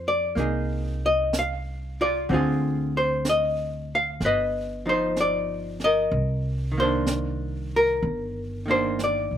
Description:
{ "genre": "jazz ballad", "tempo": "63 BPM", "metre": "4/4", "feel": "swing 66% on 8ths", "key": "unclear", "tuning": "A4 = 440 Hz", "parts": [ { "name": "archtop guitar, miked and amplified", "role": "accompaniment", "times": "0.0-9.4 s", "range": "D3 to F5", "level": "-23 LUFS", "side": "left 1 dB", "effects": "slapback echo" }, { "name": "upright bass", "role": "bass", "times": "0.0-9.4 s", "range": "G1 to F2", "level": "-30 LUFS", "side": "right 1 dB", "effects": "none" }, { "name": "jazz brush drum kit", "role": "drums", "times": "0.4-9.4 s", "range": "brushed snare drum, hi-hat, snare drum", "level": "-32 LUFS", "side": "right 2 dB", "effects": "none" } ], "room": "little or no reverb", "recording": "recorded outdoors, with no room sound", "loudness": "-22 LUFS", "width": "side -10 dB against mid", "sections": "0.0-9.4 A section", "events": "none", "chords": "0.0 Fm7; 2.3 Dm7b5; 4.2 G7b13; 6.1 Cm9" }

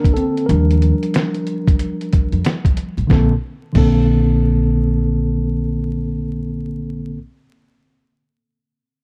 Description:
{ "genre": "hip hop, jazz-hop", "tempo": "92 BPM", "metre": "4/4", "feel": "swing 63% on 16ths", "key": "Bb major", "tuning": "A4 = 440 Hz", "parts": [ { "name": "mellow tine electric piano", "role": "accompaniment", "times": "0.0-7.2 s", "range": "D3 to Bb4", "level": "-22 LUFS", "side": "equal", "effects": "none" }, { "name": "trip hop sampler-style drum kit", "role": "drums", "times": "0.0-4.0 s", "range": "crash cymbal, hi-hat, kick drum, snare drum", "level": "-19 LUFS", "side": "equal", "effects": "none" }, { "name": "upright bass", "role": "bass", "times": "0.5-7.2 s", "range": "A1 to F2", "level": "-20 LUFS", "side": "equal", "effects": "none" } ], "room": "little or no reverb", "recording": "dry, close 1970s-style studio recording, vinyl crackle", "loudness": "-17 LUFS", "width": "mono", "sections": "0.0-3.1 A section; 3.1-5.7 B section", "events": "tine electric piano solo 0.0-3.1", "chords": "0.5 Ebmaj9; 3.1 Bbmaj9" }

